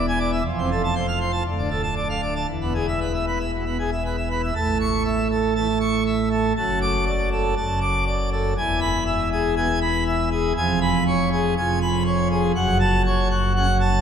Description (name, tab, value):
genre	classical, organ toccata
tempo	120 BPM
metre	4/4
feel	straight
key	A major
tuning	A4 = 441 Hz
part	pipe organ, plenum	solo	0.0-14.0 s	D1 to D6	-20 LUFS	equal	none
room	wet church reverb, RT60 3.6 s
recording	minimal, uncompressed stereo recording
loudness	-20 LUFS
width	side -8 dB against mid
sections	0.0-4.6 A section; 4.6-14.0 B section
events	none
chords	0.5 F; 1.5 Dm; 2.5 E; 4.6 A; 6.6 D/F#; 8.6 E; 10.6 C#7/E#; 12.6 F#m